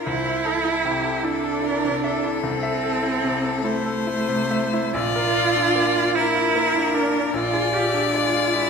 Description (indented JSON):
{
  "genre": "classical, slow romantic movement for piano trio",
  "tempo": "50 BPM (dotted quarters)",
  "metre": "12/8",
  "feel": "rubato",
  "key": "unclear",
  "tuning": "A4 = 440 Hz",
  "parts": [
    { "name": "clear violin", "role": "melody", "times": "0.0-8.7 s", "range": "G4 to D5", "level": "-25 LUFS", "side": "left 6 dB", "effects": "none" },
    { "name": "rich cello", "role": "second line", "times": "0.0-8.7 s", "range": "A3 to G4", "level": "-22 LUFS", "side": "right 4 dB", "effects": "none" },
    { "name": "bright grand piano", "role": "accompaniment", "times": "0.0-8.7 s", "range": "Bb1 to E5", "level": "-25 LUFS", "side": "left 2 dB", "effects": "none" }
  ],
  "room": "wet scoring stage reverb, RT60 1.9 s",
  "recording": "minimal, uncompressed stereo recording",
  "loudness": "-19 LUFS",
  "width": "side -6 dB against mid",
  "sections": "0.0-8.7 A section",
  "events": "none",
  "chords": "0.0 Am/C; 5.0 Bb; 7.3 Bb7"
}